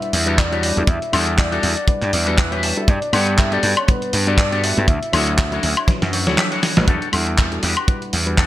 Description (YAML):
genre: nu-disco, nu disco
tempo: 120 BPM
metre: 4/4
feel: swing 56% on 16ths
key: E dorian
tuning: A4 = 441 Hz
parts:
  - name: soft octave-layered synth lead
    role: melody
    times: 0.0-6.4 s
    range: B4 to E5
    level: -25 LUFS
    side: left 2 dB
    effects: chorus, tremolo, ping-pong delay
  - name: reed electric piano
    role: accompaniment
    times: 0.0-8.4 s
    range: F#3 to F#5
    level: -26 LUFS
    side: equal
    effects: sidechain pumping
  - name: dusty soul sampler-style drum kit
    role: drums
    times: 0.0-8.5 s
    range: handclaps, hi-hat, snare drum, woodblock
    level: -21 LUFS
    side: equal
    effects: gated reverb
  - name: gritty slap bass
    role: bass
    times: 0.1-8.5 s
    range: A1 to G2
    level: -21 LUFS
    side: equal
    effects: overdrive
  - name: electric guitar with an envelope filter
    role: riff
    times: 0.3-8.5 s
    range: B3 to A5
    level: -26 LUFS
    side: left 5 dB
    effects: lush chorus, low-pass filter, digital delay
  - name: kick drum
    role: drums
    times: 0.4-8.5 s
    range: none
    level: -16 LUFS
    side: equal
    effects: none
room: light reverb, digital ambience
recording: bright 1980s-style digital production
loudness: -15 LUFS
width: side -14 dB against mid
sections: 0.0-6.9 A section; 6.9-8.5 B section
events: drop 0.0-6.9; clean electric guitar fill 1.9-2.9, 5.9-6.9; drum fill 5.9-6.9; kick drops out 6.4-6.9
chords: 0.0 Em11; 2.9 Gmaj9; 4.9 Dmaj9; 6.9 Em11